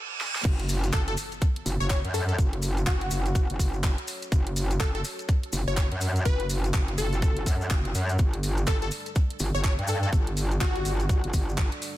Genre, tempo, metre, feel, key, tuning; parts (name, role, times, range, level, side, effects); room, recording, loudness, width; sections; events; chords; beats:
bass house; 124 BPM; 4/4; swing 60% on 16ths; F# phrygian; A4 = 441 Hz
reverse cymbal and impact; sound effects; 0.0-2.4 s; -34 LUFS; right 3 dB
garage drum kit; drums; 0.2-11.9 s; crash cymbal, handclaps, hi-hat, snare drum; -35 LUFS; right 1 dB; overdrive, high-pass filter on snare, small room reverb, high-pass filter on hats, high-pass filter on cymbals
metallic wobble bass; bass; 0.4-11.7 s; F#1 to G2; -27 LUFS; equal; chorus, tube saturation, sidechain pumping
electronic kick drum; drums; 0.4-11.7 s; -24 LUFS; equal; overdrive, high-pass filter on kick, small room reverb
dark analog pad; sustained chords; 0.5-12.0 s; G3 to D5; -45 LUFS; right 2 dB
maracas; percussion; 0.5-11.9 s; -39 LUFS; left 2 dB
plucky unison lead; melody; 0.9-11.3 s; F#4 to C#5; -34 LUFS; left 2 dB; phaser, ping-pong delay
digital ambience; dense, heavily limited modern master, high-pass filter; -24 LUFS; side -15 dB against mid
0.4-12.0 A section
break 0.0-0.4; reverse cymbal 0.0-0.4; drum fill 0.2; drop 0.4-12.0; impact 0.4-2.4
0.4 F#m; 8.2 Gsus2
| 0.45 0.93 1.42 1.90 | 2.38 2.87 3.35 3.84 | 4.32 4.80 5.29 5.77 | 6.25 6.74 7.22 7.71 | 8.19 8.68 9.16 9.64 | 10.13 10.61 11.09 11.58